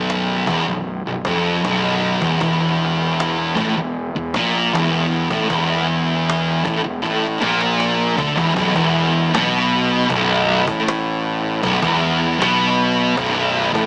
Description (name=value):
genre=stoner and doom metal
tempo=78 BPM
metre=4/4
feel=straight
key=unclear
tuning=A4 = 439 Hz
part: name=thick fuzz guitar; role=riff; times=0.0-13.9 s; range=B1 to D3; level=-19 LUFS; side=equal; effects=distortion
part: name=fuzz fingered electric bass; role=bass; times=0.0-13.9 s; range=B0 to D2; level=-28 LUFS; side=equal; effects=overdrive
part: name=cajon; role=drums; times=0.1-13.9 s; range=none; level=-28 LUFS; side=equal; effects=none
room=moderate stone room reverb, RT60 1.1 s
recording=band playing live in one room, small speaker sound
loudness=-18 LUFS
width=mono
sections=0.0-8.6 A section; 8.6-13.9 B section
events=drum fill 7.0-8.6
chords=0.0 Bsus4; 2.4 A#maj7(b5, no3)/E; 8.6 B7sus4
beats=0.09 0.86 1.64 | 2.41 3.18 3.95 4.72 | 5.49 6.26 7.03 7.80 | 8.57 9.34 10.10 10.87 | 11.64 12.40 13.17